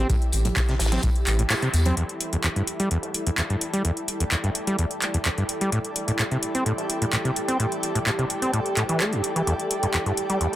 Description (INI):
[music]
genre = acid house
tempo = 128 BPM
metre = 4/4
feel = straight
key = E minor pentatonic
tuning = A4 = 439 Hz
[part]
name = dark analog pad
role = sustained chords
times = 0.0-10.6 s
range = G4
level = -34 LUFS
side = right 2 dB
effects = chorus, sidechain pumping
[part]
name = overdriven acid bass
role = riff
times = 0.0-10.5 s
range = E2 to C4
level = -26 LUFS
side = equal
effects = tube saturation, dub echo
[part]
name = round analog bass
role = bass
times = 0.0-1.9 s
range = A1 to E2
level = -22 LUFS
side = equal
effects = tube saturation, sidechain pumping
[part]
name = granular cloud pad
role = texture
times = 0.0-10.6 s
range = E4 to G5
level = -30 LUFS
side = equal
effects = built-in reverb, sidechain pumping
[part]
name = electro analog drum machine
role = drums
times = 0.1-10.6 s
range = congas, handclaps, hi-hat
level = -27 LUFS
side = equal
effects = overdrive
[part]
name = electronic kick drum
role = drums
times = 0.1-1.1 s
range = none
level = -24 LUFS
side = equal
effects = overdrive
[part]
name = loose indie drum kit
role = drums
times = 0.1-10.6 s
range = hi-hat, snare drum, tambourine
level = -38 LUFS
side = left 1 dB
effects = high-pass filter on hats, low-pass filter on hats, high-pass filter on snare, low-pass filter on snare, high-pass filter on perc, low-pass filter on perc, high-pass filter on room, low-pass filter on room
[sound]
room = moderate spring reverb, RT60 1.7 s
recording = dense, heavily limited modern master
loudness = -22 LUFS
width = side -14 dB against mid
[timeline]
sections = 0.0-2.0 A section; 2.0-10.6 B section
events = kick drops out 1.5-2.0; band accent 1.5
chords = 0.0 Am7; 2.0 Em7; 5.7 Am7; 9.5 Em7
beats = | 0.10 0.56 1.03 1.50 | 1.97 2.44 2.91 3.38 | 3.85 4.32 4.78 5.25 | 5.72 6.19 6.66 7.13 | 7.60 8.06 8.53 9.00 | 9.47 9.94 10.41